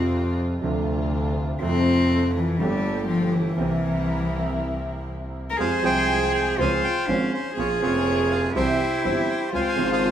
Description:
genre	tango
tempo	122 BPM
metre	4/4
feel	rubato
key	F harmonic minor from 5.6 s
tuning	A4 = 440 Hz
part	warm cello	second line	0.0-10.1 s	E3 to Bb4	-25 LUFS	left 2 dB	none
part	clear concert grand piano	accompaniment	0.0-10.1 s	F1 to G5	-27 LUFS	right 2 dB	none
part	dark studio string section	stabs	0.0-10.1 s	G3 to G5	-32 LUFS	equal	none
part	clear double bass	bass	0.0-10.1 s	F1 to F2	-28 LUFS	equal	none
part	bandoneon	melody	5.6-10.1 s	F4 to Ab5	-25 LUFS	right 2 dB	none
room	wet stone room reverb, RT60 1.2 s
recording	band playing live in one room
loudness	-20 LUFS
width	side -10 dB against mid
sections	0.0-5.6 A section; 5.6-10.1 B section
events	cello solo 0.0-5.6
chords	0.0 Fsus2; 0.6 Dm7; 1.6 F; 2.6 Gmadd9; 3.6 C7; 5.6 Fmadd9; 6.6 Dbmaj7; 7.6 Bbm7; 8.6 C; 9.5 Dbmaj7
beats	0.14 0.63 1.12 | 1.61 2.11 2.60 3.09 | 3.58 4.08 4.58 5.08 | 5.59 6.09 6.59 7.08 | 7.57 8.06 8.55 9.04 | 9.53 10.03

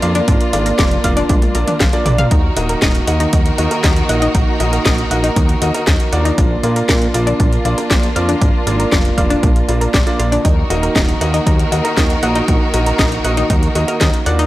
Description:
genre	italo disco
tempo	118 BPM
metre	4/4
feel	straight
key	Eb harmonic minor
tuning	A4 = 440 Hz
part	rich studio string section	sustained chords	0.0-14.5 s	Eb3 to Bb4	-22 LUFS	equal	none
part	analog pluck	arpeggios	0.0-14.5 s	D4 to Gb5	-21 LUFS	left 2 dB	chorus, tape echo
part	warm concert grand piano	stabs	0.0-14.5 s	Bb3 to Eb5	-20 LUFS	right 2 dB	tape echo
part	fat analog bass	bass	0.0-14.5 s	Eb1 to Bb2	-18 LUFS	equal	none
part	house drum kit	drums	0.0-14.5 s	hi-hat, snare drum, toms	-20 LUFS	equal	none
part	electronic kick drum	drums	0.3-14.1 s	none	-16 LUFS	equal	overdrive
room	light reverb, digital ambience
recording	dry, gritty hardware recording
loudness	-12 LUFS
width	side -16 dB against mid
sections	0.0-14.5 A section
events	drum fill 1.3-2.3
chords	0.0 Bb; 2.3 Ebm; 6.4 Bb; 10.4 Ebm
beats	| 0.28 0.79 1.30 1.80 | 2.31 2.82 3.33 3.84 | 4.35 4.86 5.36 5.87 | 6.38 6.89 7.40 7.91 | 8.41 8.92 9.43 9.94 | 10.45 10.96 11.47 11.97 | 12.48 12.99 13.50 14.01

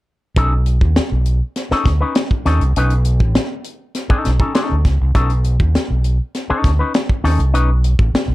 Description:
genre	funk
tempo	100 BPM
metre	4/4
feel	straight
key	B mixolydian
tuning	A4 = 440 Hz
part	electric guitar with an envelope filter	accompaniment	0.4-7.7 s	C#4 to B4	-20 LUFS	left 2 dB	none
part	overdriven fingered electric bass	bass	0.4-8.3 s	A1 to D#2	-15 LUFS	equal	none
part	tight funk drum kit	drums	0.4-8.3 s	hi-hat, kick drum, snare drum	-18 LUFS	equal	none
room	little or no reverb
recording	dark, warm production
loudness	-14 LUFS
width	side -18 dB against mid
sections	0.4-8.3 A section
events	none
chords	0.4 B9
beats	| 0.37 0.97 1.57 2.16 | 2.76 3.36 3.96 4.55 | 5.15 5.75 6.34 6.94 | 7.54 8.13

